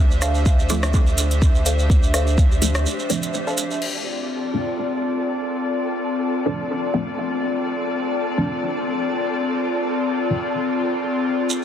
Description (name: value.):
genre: dub techno.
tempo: 125 BPM.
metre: 4/4.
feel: swing 55% on 16ths.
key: D minor.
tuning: A4 = 435 Hz.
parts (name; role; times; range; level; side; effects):
airy breathy pad; sustained chords; 0.0-11.6 s; C4 to G5; -23 LUFS; left 2 dB; chorus, vintage 12-bit sampler grit, sidechain pumping.
filtered dub chord stab; stabs; 0.0-10.5 s; F3 to D4; -28 LUFS; equal; phaser, dub echo.
soft dub sub bass; bass; 0.0-2.9 s; D2; -21 LUFS; equal; sidechain pumping.
flickering grainy texture; texture; 0.0-11.6 s; G4 to A5; -32 LUFS; right 2 dB; built-in reverb, sidechain pumping.
shekere; percussion; 0.1-3.8, 11.5-11.6 s; none; -28 LUFS; right 5 dB; none.
filtered dub chord stab; riff; 0.2-3.6 s; D4 to F5; -31 LUFS; equal; phaser, sidechain pumping, dub echo.
deep house drum kit; drums; 0.2-3.9 s; crash cymbal, hi-hat, rim click; -28 LUFS; left 1 dB; soft clipping on snare.
electronic kick drum; drums; 0.5-2.5 s; none; -16 LUFS; equal; none.
room: light reverb, digital ambience.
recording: dense, heavily limited modern master.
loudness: -19 LUFS.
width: side -9 dB against mid.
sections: 0.0-3.8 A section; 3.8-11.6 B section.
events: break 2.9-3.8; filter sweep on synth stab 3.8-11.6.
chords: 0.0 Dm7.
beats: 0.46 0.94 1.42 | 1.90 2.38 2.86 3.34 | 3.82 4.30 4.78 5.26 | 5.74 6.22 6.70 7.18 | 7.66 8.14 8.62 9.10 | 9.58 10.06 10.54 11.02 | 11.50.